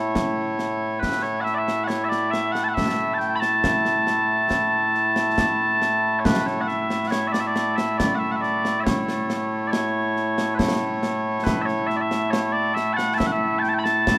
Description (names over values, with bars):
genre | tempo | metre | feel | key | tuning
scottish traditional, Scottish pipe music | 69 BPM | 3/4 | straight | A major | A4 = 440 Hz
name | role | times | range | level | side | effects
mellow small bagpipes | melody | 0.0-14.2 s | A2 to B5 | -23 LUFS | equal | none
concert snare drum and concert bass drum | drums | 0.2-14.2 s | none | -30 LUFS | equal | none
room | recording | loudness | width
light reverb | none | -23 LUFS | mono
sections
0.0-6.2 A section; 6.2-14.2 A section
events
none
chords
none